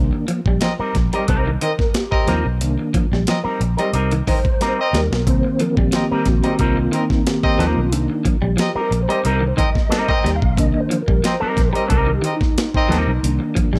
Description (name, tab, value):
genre	funk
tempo	90 BPM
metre	4/4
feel	straight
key	C minor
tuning	A4 = 440 Hz
part	mellow tonewheel organ	stabs	0.0-13.8 s	Eb3 to G5	-25 LUFS	equal	chorus vibrato, fast rotary speaker
part	vintage muted fingered electric bass	bass	0.0-13.8 s	Bb1 to Eb2	-23 LUFS	equal	none
part	clean electric guitar	riff	0.1-13.8 s	Eb3 to G3	-28 LUFS	equal	none
part	breakbeat sampler-style drum kit	drums	0.3-13.8 s	hi-hat, kick drum, snare drum	-22 LUFS	equal	none
part	clear horn section	second line	0.6-13.0 s	C4 to Eb5	-27 LUFS	equal	none
part	electric guitar with an envelope filter	accompaniment	0.8-13.1 s	G3 to Bb4	-27 LUFS	equal	spring reverb
room	little or no reverb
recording	none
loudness	-18 LUFS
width	mono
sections	0.0-13.8 A section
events	tonewheel organ solo 0.0-13.8; drum fill 4.6-5.3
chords	0.0 Cm7